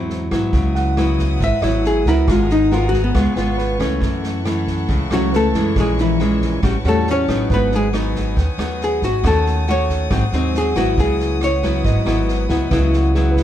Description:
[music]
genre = bossa nova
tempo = 138 BPM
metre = 4/4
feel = straight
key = C# minor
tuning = A4 = 440 Hz
[part]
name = archtop guitar, miked and amplified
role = melody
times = 0.0-11.8 s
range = E3 to E5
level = -20 LUFS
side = left 1 dB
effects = none
[part]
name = nylon-string guitar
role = accompaniment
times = 0.0-13.4 s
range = F#2 to A#4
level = -21 LUFS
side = left 1 dB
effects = none
[part]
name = upright bass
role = bass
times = 0.0-13.4 s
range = G#1 to F#2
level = -20 LUFS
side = equal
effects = none
[part]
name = swinging big-band drum kit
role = drums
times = 0.1-13.4 s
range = kick drum, rim click, snare drum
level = -25 LUFS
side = right 1 dB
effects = none
[part]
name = warm studio string section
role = sustained chords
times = 0.5-13.4 s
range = E4 to D#6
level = -30 LUFS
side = left 3 dB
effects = none
[part]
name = warm grand piano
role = accompaniment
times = 0.8-13.4 s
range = G#4 to F#5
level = -30 LUFS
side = right 7 dB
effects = none
[sound]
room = little or no reverb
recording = dark, warm production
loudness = -15 LUFS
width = side -11 dB against mid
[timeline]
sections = 0.5-13.4 A section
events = hollow-body jazz guitar solo 0.5-13.4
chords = 0.0 G#7alt; 0.5 C#m11; 2.3 G#m9; 3.1 C#7; 4.0 F#m7; 5.8 A#m7b5; 6.6 A13; 7.5 G#m7; 9.2 D#m7b5; 10.1 G#7; 11.0 C#m11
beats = 0.09 | 0.53 0.96 1.40 1.84 | 2.27 2.71 3.15 3.58 | 4.02 4.45 4.89 5.32 | 5.76 6.19 6.63 7.06 | 7.50 7.93 8.37 8.80 | 9.23 9.67 10.10 10.54 | 10.97 11.40 11.84 12.27 | 12.71 13.14

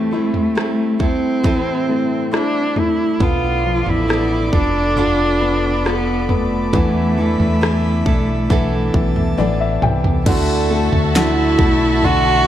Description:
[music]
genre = pop ballad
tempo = 68 BPM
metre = 4/4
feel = straight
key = unclear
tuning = A4 = 440 Hz
[part]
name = warm cello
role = melody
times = 0.0-12.5 s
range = A3 to F#4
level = -18 LUFS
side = right 1 dB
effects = none
[part]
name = warm grand piano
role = accompaniment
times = 0.0-12.5 s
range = D3 to G5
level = -22 LUFS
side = left 6 dB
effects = none
[part]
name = picked steel-string acoustic guitar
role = arpeggios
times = 0.0-12.5 s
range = A2 to A4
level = -24 LUFS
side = right 7 dB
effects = tape echo
[part]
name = pop drum kit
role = drums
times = 0.3-12.2 s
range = crash cymbal, kick drum, rim click, snare drum, toms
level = -20 LUFS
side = equal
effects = none
[part]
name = airy breathy pad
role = sustained chords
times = 3.2-10.3 s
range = A4 to D6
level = -27 LUFS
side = left 2 dB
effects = chorus
[part]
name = deep dub fingered electric bass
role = bass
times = 3.2-12.4 s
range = F1 to E2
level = -21 LUFS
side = equal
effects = none
[part]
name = warm studio violin section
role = second line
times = 10.3-12.5 s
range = F#4 to A5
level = -23 LUFS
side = left 2 dB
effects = none
[sound]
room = light reverb, studio reverb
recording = dark, warm production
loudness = -14 LUFS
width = side -11 dB against mid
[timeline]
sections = 0.0-10.3 A section; 10.3-12.5 B section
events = grand piano fill 8.9-10.3; drum fill 9.4-10.3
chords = 0.0 Am7; 3.2 Bm7b5; 6.7 E7sus4; 10.3 Dadd9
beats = 0.56 1.44 2.33 | 3.21 4.09 4.97 5.86 | 6.74 7.62 8.50 9.39 | 10.27 11.15 12.03

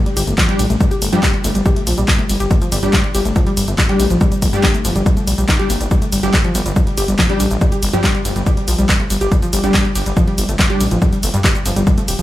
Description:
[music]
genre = driving peak-time techno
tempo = 141 BPM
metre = 4/4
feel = straight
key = G minor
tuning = A4 = 440 Hz
[part]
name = warbly dusty pluck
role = riff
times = 0.1-12.2 s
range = F3 to G4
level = -20 LUFS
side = equal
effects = chorus, sidechain pumping, tape echo
[part]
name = punchy analog drum machine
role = drums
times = 0.1-12.2 s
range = handclaps, hi-hat, ride cymbal, shaker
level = -21 LUFS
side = equal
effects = none
[part]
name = detuned saw bass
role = bass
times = 0.2-12.2 s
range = D1 to G2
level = -19 LUFS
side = equal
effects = sidechain pumping
[part]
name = electronic kick drum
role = drums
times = 0.4-12.0 s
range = none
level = -15 LUFS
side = equal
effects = none
[part]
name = rave stab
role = stabs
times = 0.5-10.8 s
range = G3 to G4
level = -23 LUFS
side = equal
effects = chorus, built-in reverb, sidechain pumping, tape echo
[sound]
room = digital ambience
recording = small room ambience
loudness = -13 LUFS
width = side -14 dB against mid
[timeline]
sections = 0.0-12.2 A section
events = none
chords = 0.0 G5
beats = 0.38 | 0.81 1.23 1.66 2.08 | 2.51 2.93 3.36 3.78 | 4.21 4.63 5.06 5.49 | 5.91 6.34 6.76 7.19 | 7.61 8.04 8.46 8.89 | 9.32 9.74 10.17 10.59 | 11.02 11.44 11.87

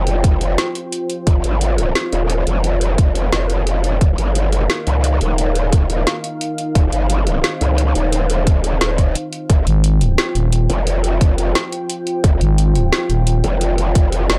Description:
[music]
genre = dark technical drum and bass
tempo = 175 BPM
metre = 4/4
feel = straight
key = F minor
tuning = A4 = 440 Hz
[part]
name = dark analog pad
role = sustained chords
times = 0.0-14.4 s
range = Eb4 to G5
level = -27 LUFS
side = equal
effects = chorus, sidechain pumping
[part]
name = growl bass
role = bass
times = 0.0-14.4 s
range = Eb1 to Db2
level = -19 LUFS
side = equal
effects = chorus, overdrive, sidechain pumping
[part]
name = drum and bass drum kit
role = drums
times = 0.1-14.4 s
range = hi-hat, snare drum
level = -24 LUFS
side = equal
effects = none
[part]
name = electronic kick drum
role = drums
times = 0.2-14.0 s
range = none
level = -16 LUFS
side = equal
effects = none
[part]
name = growling FM bass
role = bass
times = 9.7-13.4 s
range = Eb1 to Ab1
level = -16 LUFS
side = equal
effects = none
[sound]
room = light reverb, digital ambience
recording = dark, warm production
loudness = -17 LUFS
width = mono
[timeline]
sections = 0.0-14.4 A section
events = break 9.2-9.5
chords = 0.0 Fm; 4.0 Eb; 9.5 Fm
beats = 0.24 0.58 0.93 | 1.27 1.61 1.95 2.30 | 2.64 2.98 3.33 3.67 | 4.01 4.35 4.70 5.04 | 5.38 5.72 6.07 6.41 | 6.75 7.10 7.44 7.78 | 8.12 8.47 8.81 9.15 | 9.50 9.84 10.18 10.53 | 10.87 11.21 11.55 11.90 | 12.24 12.58 12.93 13.27 | 13.61 13.95 14.30

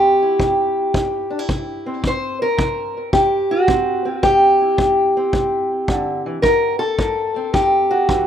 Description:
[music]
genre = acoustic country blues, solo or duo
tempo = 109 BPM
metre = 4/4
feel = swing 67% on 8ths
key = C major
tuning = A4 = 440 Hz
[part]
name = fingerpicked steel-string acoustic guitar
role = melody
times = 0.0-8.3 s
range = C3 to C5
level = -16 LUFS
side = equal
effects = analog delay
[part]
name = kick drum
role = drums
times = 0.4-8.3 s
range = none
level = -23 LUFS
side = equal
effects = none
[sound]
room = small room reverb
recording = rough home demo mix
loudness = -15 LUFS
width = side -9 dB against mid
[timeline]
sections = 0.0-8.3 A section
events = none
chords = 0.0 C; 6.4 F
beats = 0.40 0.95 1.50 | 2.05 2.59 3.14 3.69 | 4.24 4.79 5.34 5.89 | 6.44 6.99 7.54 8.09

